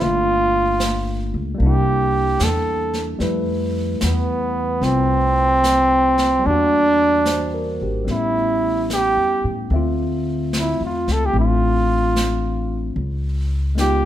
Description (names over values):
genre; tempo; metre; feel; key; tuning
jazz ballad; 74 BPM; 4/4; swing 67% on 8ths; unclear; A4 = 439 Hz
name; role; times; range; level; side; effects
warm flugelhorn; melody; 0.0-14.1 s; B3 to A4; -18 LUFS; right 1 dB; none
barky tine electric piano; accompaniment; 0.0-14.1 s; G3 to E5; -25 LUFS; left 2 dB; none
upright bass; bass; 0.0-14.1 s; G1 to A2; -22 LUFS; left 1 dB; none
jazz brush drum kit; drums; 0.0-14.1 s; brushed snare drum, hi-hat, snare drum; -28 LUFS; right 1 dB; none
room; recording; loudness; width
moderate large studio reverb, RT60 1.4 s; band playing live in one room; -17 LUFS; side -12 dB against mid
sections
0.0-14.1 A section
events
none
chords
0.0 Gm7; 1.6 C9; 3.2 Fmaj9#11; 6.4 Em7b5; 8.1 A7; 9.7 Dm9; 13.0 Db9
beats
| 0.01 0.81 1.61 2.41 | 3.21 4.02 4.83 5.64 | 6.45 7.26 8.08 8.90 | 9.72 10.53 11.35 12.16 | 12.97 13.78